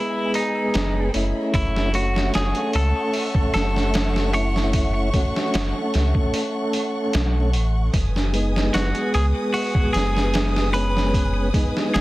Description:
trip hop; 75 BPM; 4/4; straight; F# dorian; A4 = 440 Hz
semi-hollow electric guitar; melody; 0.0-12.0 s; D#4 to C#5; -26 LUFS; equal; tape echo
mellow tonewheel organ; accompaniment; 0.0-12.0 s; G#3 to A4; -25 LUFS; equal; overdrive, fast rotary speaker, tremolo, tape echo
dark studio violin section; sustained chords; 0.0-12.0 s; A3 to D#6; -32 LUFS; left 1 dB
trip hop sampler-style drum kit; drums; 0.3-12.0 s; hi-hat, kick drum, snare drum; -24 LUFS; equal; overdrive
warm sub bass; bass; 0.7-12.0 s; F#1 to C#2; -22 LUFS; equal; tube saturation
light reverb; dense, heavily limited modern master, vinyl crackle; -19 LUFS; side -18 dB against mid
0.0-12.0 A section
0.0 G#m; 1.5 F#m; 7.9 G#m/F#
0.74 | 1.54 2.34 3.14 3.94 | 4.74 5.54 6.34 7.14 | 7.94 8.74 9.54 10.34 | 11.14 11.94

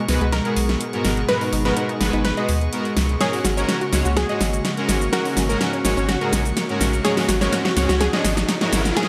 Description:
progressive house; 125 BPM; 4/4; straight; A4 = 440 Hz
unison pluck; melody; 0.0-9.1 s; F#4 to B4; -31 LUFS; equal; dub echo
airy breathy pad; sustained chords; 0.0-9.1 s; B2 to G#4; -31 LUFS; equal; chorus
unison pluck; arpeggios; 0.0-9.1 s; G#3 to D#5; -29 LUFS; equal; dub echo
drifting glass-harmonics texture; texture; 0.0-9.1 s; C#6; -38 LUFS; equal
soft supersaw; stabs; 0.1-9.1 s; G#2 to C#5; -28 LUFS; equal; dub echo
round analog bass; bass; 0.1-8.9 s; G#1 to D#2; -25 LUFS; equal
big-room dance drum kit; drums; 0.1-9.1 s; hi-hat, shaker, snare drum; -26 LUFS; equal
riser; sound effects; 6.1-9.1 s; -34 LUFS; equal
moderate scoring stage reverb, RT60 2.1 s; -20 LUFS; mono
0.0-9.1 A section
build-up 0.0-9.1; drum fill 0.0-9.1
0.0 G#m9; 3.2 F#add9/G#
0.33 0.81 | 1.29 1.77 2.25 2.73 | 3.21 3.69 4.17 4.65 | 5.13 5.61 6.09 6.57 | 7.05 7.53 8.01 8.49 | 8.97

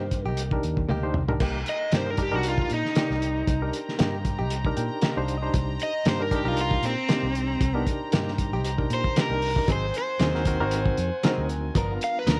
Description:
straight-eighth soul blues; 116 BPM; 4/4; swing 54% on 16ths; C minor; A4 = 441 Hz
overdriven semi-hollow guitar; melody; 0.0-12.4 s; C4 to F5; -30 LUFS; equal
barky reed electric piano; accompaniment; 0.0-12.4 s; B3 to G5; -34 LUFS; equal; overdrive, fast tremolo
direct-recorded clean electric guitar; stabs; 0.0-12.4 s; F3 to A#4; -36 LUFS; equal; spring reverb
vintage muted fingered electric bass; bass; 0.0-12.4 s; G1 to Bb2; -32 LUFS; equal
cloth-damped thuddy drum kit; drums; 0.1-12.4 s; crash cymbal, hi-hat, kick drum, snare drum, toms; -29 LUFS; equal
clear horn section; sustained chords; 1.4-12.4 s; C5 to Bb5; -40 LUFS; equal
studio ambience; -26 LUFS; mono
0.0-1.4 A section; 1.4-12.4 B section
drum fill 0.9-1.4; overdriven electric guitar solo 1.4-12.4; reed electric piano fill 4.5-5.5
0.0 Cm7; 9.7 Ab7; 11.8 G7#9
0.38 0.90 | 1.41 1.93 2.45 2.96 | 3.48 4.00 4.51 5.03 | 5.55 6.07 6.58 7.10 | 7.62 8.14 8.65 9.17 | 9.69 10.21 10.72 11.24 | 11.76 12.27

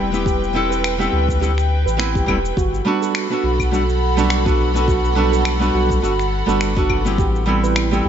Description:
sunset chillout; 104 BPM; 4/4; swing 56% on 16ths; A4 = 442 Hz
nylon-string guitar; accompaniment; 0.0-8.1 s; G3 to B4; -21 LUFS; moving between left 3 dB and right 5 dB; auto-pan, ping-pong delay
airy breathy pad; sustained chords; 0.0-8.1 s; A4 to B5; -23 LUFS; right 1 dB; chorus
steel pan; arpeggios; 0.0-8.1 s; F#4 to B4; -25 LUFS; right 4 dB; ping-pong delay
warm sub bass; bass; 0.0-8.1 s; E1 to D2; -20 LUFS; left 1 dB; tube saturation
electronic shaker, finger snaps and claves; drums; 0.1-8.0 s; -27 LUFS; left 2 dB; studio reverb
electronic kick drum; drums; 0.3-7.3 s; -22 LUFS; left 1 dB; studio reverb
light reverb; nothing above 7.7 kHz; -16 LUFS; side -9 dB against mid
0.0-8.1 A section
0.0 Am9; 2.6 Gmaj9; 7.2 Am9
| 0.26 0.84 1.42 1.99 | 2.57 3.15 3.72 4.30 | 4.88 5.45 6.03 6.61 | 7.18 7.76

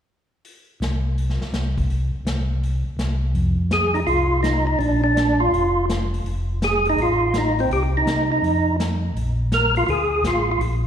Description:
soul jazz organ trio; 165 BPM; 4/4; swing 65% on 8ths; F mixolydian; A4 = 440 Hz
vintage drum kit; drums; 0.4-10.7 s; hi-hat, kick drum, snare drum; -29 LUFS; equal; slapback echo
mellow tonewheel organ; bass; 0.8-10.9 s; F1 to C3; -22 LUFS; equal; chorus vibrato, slow rotary speaker
percussive tonewheel organ; melody; 3.7-10.6 s; C4 to Bb4; -19 LUFS; right 1 dB; slow rotary speaker, overdrive, chorus vibrato, slapback echo
moderate lush hall reverb, RT60 2.2 s; live gig heard through the venue's PA, recital hall reverb; -18 LUFS; side -8 dB against mid
0.4-3.4 A section; 3.4-10.9 B section
0.4 N.C.; 3.4 F5; 4.8 Bb; 6.3 F; 7.7 Cm; 8.4 Ebsus2/F; 9.2 Bb7
| 0.44 0.81 1.17 1.53 | 1.90 2.26 2.62 2.99 | 3.35 3.71 4.08 4.44 | 4.80 5.17 5.53 5.89 | 6.25 6.62 6.98 7.34 | 7.70 8.07 8.43 8.79 | 9.15 9.52 9.88 10.24 | 10.60

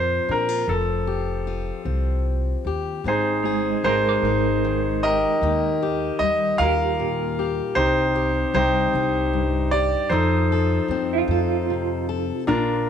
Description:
acoustic folk-pop ballad; 51 BPM (dotted quarters); 6/8; straight; A4 = 440 Hz
bright concert grand piano; melody; 0.0-12.9 s; D4 to F5; -22 LUFS; right 1 dB
fingerpicked steel-string acoustic guitar; accompaniment; 0.0-12.9 s; G2 to A4; -26 LUFS; left 10 dB
upright bass; bass; 0.0-12.9 s; F1 to Bb2; -26 LUFS; right 1 dB
electric guitar through a small old amp; arpeggios; 3.4-12.9 s; Ab3 to D6; -27 LUFS; right 13 dB; tremolo
moderate plate reverb, RT60 2.6 s; 1960s-style stereo with parts hard left and right; -20 LUFS; side -8 dB against mid
0.0-3.1 A section; 3.1-12.5 B section
0.0 Bbsus2; 0.7 Fadd9; 3.1 Ab; 5.4 Ebadd9; 7.8 Cm; 10.1 F7
| 0.68 1.87 | 3.05 4.24 | 5.42 6.59 | 7.77 8.94 | 10.11 11.29 | 12.47

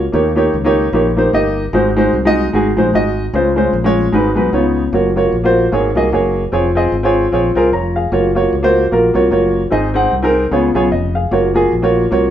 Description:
uptempo gospel; 150 BPM; 4/4; swing 58% on 8ths; Db major; A4 = 440 Hz
warm upright piano; accompaniment; 0.0-12.3 s; Ab2 to Bb5; -13 LUFS; equal
fingered electric bass; bass; 0.0-12.3 s; F1 to Eb2; -19 LUFS; left 1 dB
wet studio reverb, RT60 0.9 s; band playing live in one room; -12 LUFS; side -10 dB against mid
0.0-12.3 A section
upright piano fill 7.5-8.1
0.1 Eb7; 1.7 Ab7; 3.3 Dbmaj7; 4.1 Abm7; 4.5 Db9; 4.9 Gbmaj7; 5.7 Ab9sus4; 6.5 Dbmaj7/F; 8.1 Gbmaj7; 9.7 Ab; 10.5 Db7; 11.3 Gbmaj7
| 0.14 0.54 0.94 1.34 | 1.74 2.14 2.54 2.94 | 3.34 3.73 4.13 4.53 | 4.93 5.33 5.73 6.13 | 6.53 6.93 7.33 7.73 | 8.13 8.53 8.92 9.32 | 9.72 10.12 10.52 10.92 | 11.32 11.72 12.12

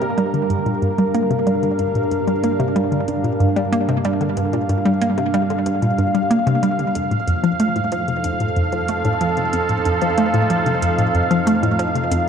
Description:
ambient, sequencer-driven space music; 93 BPM; 4/4; straight; G minor; A4 = 439 Hz
sweeping resonant pad; sustained chords; 0.0-12.3 s; F3 to F5; -20 LUFS; right 1 dB; lush chorus
hollow square pluck; riff; 0.0-12.2 s; F2 to Bb3; -19 LUFS; equal; chorus, tape echo
analog drone; bass; 0.0-12.3 s; F2 to G2; -29 LUFS; equal; chorus
electronic hi-hat and congas; percussion; 0.0-12.2 s; -38 LUFS; left 2 dB; tape echo
wet cathedral reverb, RT60 6.6 s; in a vast, echoing space; -16 LUFS; side -7 dB against mid
0.0-12.3 A section
fade-in on drum 0.0-12.3
0.0 Gm7; 7.0 F7
0.50 1.15 | 1.79 2.44 3.08 3.73 | 4.37 5.02 5.66 6.31 | 6.95 7.60 8.24 8.89 | 9.53 10.18 10.82 11.47 | 12.11

